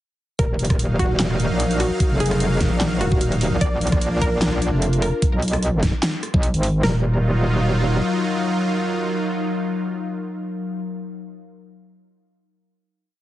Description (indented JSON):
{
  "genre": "heavy wobble dubstep",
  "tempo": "149 BPM",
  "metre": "4/4",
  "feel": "swing 54% on 16ths, half-time",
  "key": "Eb harmonic minor",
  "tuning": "A4 = 440 Hz",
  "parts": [
    { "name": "wide unison pluck", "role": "melody", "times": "0.4-11.5 s", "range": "Gb4 to D5", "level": "-28 LUFS", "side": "equal", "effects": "digital delay" },
    { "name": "supersaw pad", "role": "sustained chords", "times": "0.4-10.8 s", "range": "Gb3 to F5", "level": "-27 LUFS", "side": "right 1 dB", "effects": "sidechain pumping" },
    { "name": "metallic wobble bass", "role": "bass", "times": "0.4-8.0 s", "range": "Eb1 to Cb2", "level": "-20 LUFS", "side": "equal", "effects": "chorus, overdrive" },
    { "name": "dubstep drum kit", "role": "drums", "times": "0.4-6.9 s", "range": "kick drum, snare drum", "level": "-21 LUFS", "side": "equal", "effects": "overdrive" },
    { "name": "dubstep drum kit", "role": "drums", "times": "0.4-6.7 s", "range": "handclaps, hi-hat, rim click, snare drum", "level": "-25 LUFS", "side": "equal", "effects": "overdrive" },
    { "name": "warbly tape-like pad", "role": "texture", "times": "0.7-10.8 s", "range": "Gb3 to F5", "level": "-27 LUFS", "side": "left 2 dB", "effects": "chorus, built-in reverb, sidechain pumping" }
  ],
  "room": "light reverb, digital ambience",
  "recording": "heavily compressed radio sound, multiband compression, nothing above 10.4 kHz",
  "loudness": "-18 LUFS",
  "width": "side -14 dB against mid",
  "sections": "0.4-6.8 drop; 6.8-10.1 final chord",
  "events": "drop 0.4-6.8",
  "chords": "0.4 Ebmadd9; 3.6 Bb; 6.8 Ebmadd9"
}